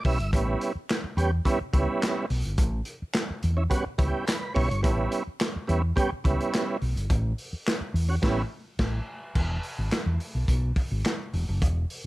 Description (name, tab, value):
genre	funk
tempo	106 BPM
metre	4/4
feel	straight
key	unclear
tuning	A4 = 440 Hz
part	tonewheel organ	stabs	0.0-8.4 s	G3 to E5	-28 LUFS	right 2 dB	chorus vibrato
part	fingered electric bass	bass	0.0-11.8 s	E1 to E2	-26 LUFS	equal	none
part	crunchy breakbeat drum kit	drums	0.0-12.0 s	crash cymbal, handclaps, hi-hat, kick drum, snare drum	-28 LUFS	equal	none
room	little or no reverb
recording	none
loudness	-24 LUFS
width	side -18 dB against mid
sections	0.0-9.4 A section; 9.4-12.1 B section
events	tonewheel organ fill 0.0-0.3, 3.7-4.8; band accent 8.2-9.4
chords	0.0 A9; 9.4 E